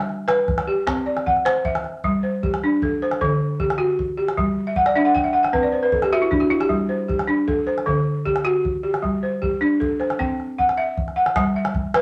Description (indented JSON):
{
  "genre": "west african traditional, West African string and xylophone music",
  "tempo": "103 BPM (dotted quarters)",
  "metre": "12/8",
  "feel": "straight",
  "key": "G major",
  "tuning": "A4 = 437 Hz",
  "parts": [
    { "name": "balafon", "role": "arpeggios", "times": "0.0-12.0 s", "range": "D3 to G5", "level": "-22 LUFS", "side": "equal", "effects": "none" },
    { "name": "calabash", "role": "percussion", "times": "0.0-12.0 s", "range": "none", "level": "-29 LUFS", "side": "equal", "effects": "none" }
  ],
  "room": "wet studio reverb, RT60 0.6 s",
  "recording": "none",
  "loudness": "-21 LUFS",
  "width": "mono",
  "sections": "0.0-2.0 A section; 2.0-11.4 B section",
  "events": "balafon fill 4.7-6.7",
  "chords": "0.0 G; 0.9 C; 2.0 G5; 3.2 D; 4.4 G5; 5.5 C; 6.7 G5; 7.9 D; 9.0 G5; 10.2 C; 11.4 N.C."
}